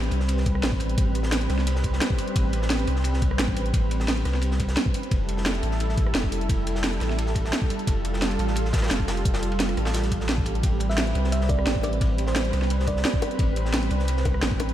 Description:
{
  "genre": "liquid drum and bass",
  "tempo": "174 BPM",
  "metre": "4/4",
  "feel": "straight",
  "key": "A minor",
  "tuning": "A4 = 441 Hz",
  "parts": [
    { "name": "lush unison pad", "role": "sustained chords", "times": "0.0-14.7 s", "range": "G3 to B4", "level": "-29 LUFS", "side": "right 1 dB", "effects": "chorus, sidechain pumping" },
    { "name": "warm sub bass", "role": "bass", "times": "0.0-14.7 s", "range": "F1 to C2", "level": "-25 LUFS", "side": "equal", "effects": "none" },
    { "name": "crunchy breakbeat drum kit", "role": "drums", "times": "0.0-14.7 s", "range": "ride cymbal, snare drum", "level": "-35 LUFS", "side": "equal", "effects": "high-pass filter on cymbals, small room ambience, high-pass filter on snare, high-pass filter on room" },
    { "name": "drum and bass drum kit", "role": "drums", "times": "0.0-14.7 s", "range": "hi-hat, rim click, snare drum", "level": "-29 LUFS", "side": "right 1 dB", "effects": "small room ambience" },
    { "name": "electronic kick drum", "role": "drums", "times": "0.5-14.6 s", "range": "none", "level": "-25 LUFS", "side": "equal", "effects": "small room ambience" },
    { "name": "thumb-piano-like synth pluck", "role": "melody", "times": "10.9-13.1 s", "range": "C5 to E5", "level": "-32 LUFS", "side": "right 3 dB", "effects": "chorus, ping-pong delay" },
    { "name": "bongos", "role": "percussion", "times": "11.5-14.7 s", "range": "none", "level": "-35 LUFS", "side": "left 6 dB", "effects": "none" }
  ],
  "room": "light reverb, small room reverb",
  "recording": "none",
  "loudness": "-22 LUFS",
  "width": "side -12 dB against mid",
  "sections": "0.0-14.7 A section",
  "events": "none",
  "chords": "0.0 Am9; 5.1 Fmaj9; 10.6 Am9"
}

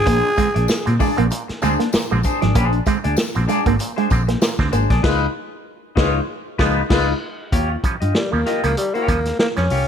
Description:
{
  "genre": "funk",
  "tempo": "96 BPM",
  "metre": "4/4",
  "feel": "swing 56% on 16ths",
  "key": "Bb mixolydian",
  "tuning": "A4 = 439 Hz",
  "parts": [
    { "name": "growling tenor saxophone", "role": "melody", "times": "0.0-1.0, 8.1-9.9 s", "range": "G3 to Ab4", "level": "-20 LUFS", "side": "equal", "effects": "none" },
    { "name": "clean electric guitar", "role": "accompaniment", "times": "0.0-9.9 s", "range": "D4 to Eb5", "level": "-24 LUFS", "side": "left 4 dB", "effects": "harmonic tremolo" },
    { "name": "vintage muted fingered electric bass", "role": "bass", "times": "0.0-9.8 s", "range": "Ab1 to Bb2", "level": "-20 LUFS", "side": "equal", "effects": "none" },
    { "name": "electric guitar with an envelope filter", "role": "riff", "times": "0.1-4.8 s", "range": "F3 to Bb3", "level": "-24 LUFS", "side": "right 6 dB", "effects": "analog chorus" },
    { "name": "auto-wah clav", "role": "stabs", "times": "0.1-9.8 s", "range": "Bb2 to Db4", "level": "-28 LUFS", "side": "right 6 dB", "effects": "overdrive" },
    { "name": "vintage drum kit", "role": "drums", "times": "0.1-9.9 s", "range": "crash cymbal, hi-hat, kick drum, snare drum", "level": "-21 LUFS", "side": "equal", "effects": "none" },
    { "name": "tambourine", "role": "percussion", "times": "0.1-4.9 s", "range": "none", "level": "-35 LUFS", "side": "left 5 dB", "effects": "none" },
    { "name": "warm horn section", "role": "second line", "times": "5.0-7.1 s", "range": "Ab3 to Cb5", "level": "-27 LUFS", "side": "left 4 dB", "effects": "none" }
  ],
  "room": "light reverb",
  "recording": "none",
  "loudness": "-16 LUFS",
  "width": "side -8 dB against mid",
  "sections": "0.0-7.5 A section; 7.5-9.9 B section",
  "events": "band accent 5.0-7.5",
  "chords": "0.0 Bb9; 5.0 Db9; 7.5 Eb9"
}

